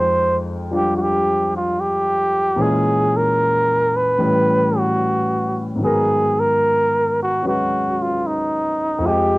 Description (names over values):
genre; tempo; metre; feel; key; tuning
jazz ballad; 75 BPM; 4/4; swing 69% on 8ths; unclear; A4 = 440 Hz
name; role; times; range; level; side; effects
trumpet with bucket mute; melody; 0.0-9.4 s; Eb4 to C5; -18 LUFS; right 1 dB; cassette tape
warm grand piano; accompaniment; 0.0-9.4 s; F2 to G5; -21 LUFS; left 1 dB; none
room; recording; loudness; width
moderate studio reverb, RT60 0.6 s; home recording on cassette; -16 LUFS; side -21 dB against mid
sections
0.0-9.4 A section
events
none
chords
0.0 Fm9; 2.6 Bbm7b5; 4.2 A9; 5.8 Abm9